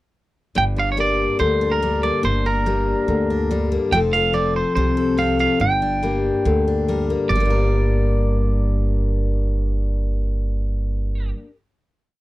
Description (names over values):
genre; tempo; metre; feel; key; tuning
honky-tonk and classic country; 142 BPM; 4/4; straight; G minor; A4 = 440 Hz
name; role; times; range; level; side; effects
twangy electric guitar; melody; 0.6-11.3 s; Bb4 to G5; -23 LUFS; right 3 dB; none
picked steel-string acoustic guitar; accompaniment; 0.6-11.5 s; G2 to Bb4; -22 LUFS; left 3 dB; none
upright bass; bass; 0.6-11.3 s; F1 to D2; -21 LUFS; right 1 dB; none
room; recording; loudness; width
little or no reverb; dry, close 1970s-style studio recording; -18 LUFS; side -17 dB against mid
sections
0.6-7.3 A section; 7.3-10.7 final chord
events
none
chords
0.6 Gm; 3.9 F; 5.6 Gm